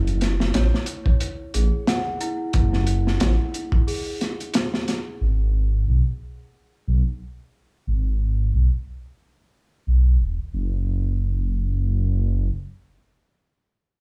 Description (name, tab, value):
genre	trip hop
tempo	90 BPM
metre	4/4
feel	swing 57% on 16ths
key	unclear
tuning	A4 = 440 Hz
part	large celesta	arpeggios	0.0-5.2 s	E4 to F#5	-33 LUFS	equal	low-pass filter, tape echo
part	dark detuned saw bass	bass	0.0-12.5 s	D#1 to B1	-22 LUFS	equal	tube saturation
part	crunchy breakbeat drum kit	drums	0.1-5.1 s	hi-hat, kick drum, snare drum	-25 LUFS	equal	none
room	small room ambience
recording	small room reverb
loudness	-23 LUFS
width	mono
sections	0.0-10.5 A section; 10.5-13.2 B section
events	filter sweep on detuned saw bass 0.0-10.5; filter sweep on celesta 0.0-5.2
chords	0.0 F#7sus2; 5.2 G#m; 10.5 N.C.